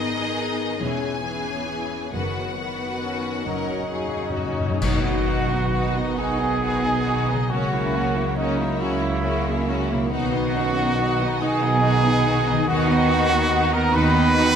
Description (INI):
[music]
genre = classical, slow romantic movement for symphony orchestra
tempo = 46 BPM (dotted quarters)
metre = 6/8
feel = uneven beats, rubato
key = B major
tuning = A4 = 442 Hz
[part]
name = clear symphonic violin section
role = melody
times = 0.0-14.5 s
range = A#4 to G#5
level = -33 LUFS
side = left 3 dB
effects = none
[part]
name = rich symphonic violin section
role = second line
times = 0.0-14.5 s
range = C#4 to B4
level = -31 LUFS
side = left 3 dB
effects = none
[part]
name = clear symphonic viola section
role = accompaniment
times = 0.0-14.6 s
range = D#3 to D#4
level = -29 LUFS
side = right 2 dB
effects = none
[part]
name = concert harp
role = arpeggios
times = 0.0-14.6 s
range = E2 to C#5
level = -31 LUFS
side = left 9 dB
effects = none
[part]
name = rich symphonic cello section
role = bass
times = 0.0-14.6 s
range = E2 to D#3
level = -28 LUFS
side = right 3 dB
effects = none
[part]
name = rich symphonic double bass section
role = bass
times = 0.0-14.6 s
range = E1 to D#2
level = -27 LUFS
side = right 2 dB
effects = none
[part]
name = cymbal swell, clash cymbals and concert bass drum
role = percussion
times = 2.1-6.6 s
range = none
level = -30 LUFS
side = equal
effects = none
[part]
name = timpani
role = percussion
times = 2.1-6.1 s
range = F#2 to B2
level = -32 LUFS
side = left 2 dB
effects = none
[part]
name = mellow hollow small flute group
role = second line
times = 3.0-14.6 s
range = C#5 to B5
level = -30 LUFS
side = equal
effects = none
[part]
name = warm trumpet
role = stabs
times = 3.0-14.6 s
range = C#4 to B4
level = -25 LUFS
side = right 2 dB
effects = none
[part]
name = clear trombone section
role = sustained chords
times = 4.8-14.6 s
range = D#3 to B3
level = -29 LUFS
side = right 3 dB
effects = none
[part]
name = warm French horn section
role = sustained chords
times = 6.2-14.6 s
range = G#3 to D#4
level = -29 LUFS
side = left 2 dB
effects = none
[sound]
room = moderate concert hall reverb, RT60 2.1 s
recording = none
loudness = -20 LUFS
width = side -8 dB against mid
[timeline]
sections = 0.0-4.8 A section; 4.8-14.6 B section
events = timpani fill 3.5-4.8; band accent 4.8-5.7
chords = 0.0 G#m; 0.8 C#m7/E; 2.1 B/F#; 3.5 F#; 4.8 B; 7.5 F#7/C#; 10.1 B; 12.7 B/D#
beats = 0.80 | 2.14 3.47 | 4.82 6.18 | 7.50 8.81 | 10.12 11.42 | 12.68 13.94